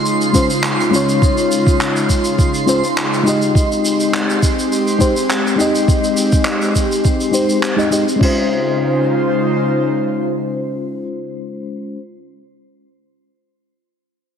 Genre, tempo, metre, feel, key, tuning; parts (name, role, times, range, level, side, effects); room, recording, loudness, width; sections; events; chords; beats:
sunset chillout; 103 BPM; 4/4; straight; Db lydian; A4 = 439 Hz
airy breathy pad; sustained chords; 0.0-11.3 s; Db3 to C5; -19 LUFS; equal; chorus
twinkling granular texture; texture; 0.0-8.2 s; C6; -26 LUFS; right 3 dB; built-in reverb
jazz brush drum kit; drums; 0.1-8.3 s; crash cymbal, handclaps, shaker; -22 LUFS; right 1 dB
mellow FM electric piano; accompaniment; 0.3-12.0 s; Ab3 to Eb5; -18 LUFS; left 2 dB; chorus, auto-pan, low-pass filter, digital delay
electronic kick drum; drums; 0.3-8.3 s; -15 LUFS; right 1 dB
moderate lush hall reverb, RT60 1.6 s, small room ambience; heavily compressed radio sound; -13 LUFS; side -8 dB against mid
0.0-8.2 A section; 8.2-10.5 B section
filter sweep on FM electric piano 0.0-8.2
0.0 Dbmaj7; 3.5 Abmaj7; 8.2 Dbmaj7
0.05 0.64 | 1.22 1.80 2.38 2.97 | 3.55 4.13 4.71 5.30 | 5.88 6.46 7.04 7.63 | 8.21 8.79 9.37 9.96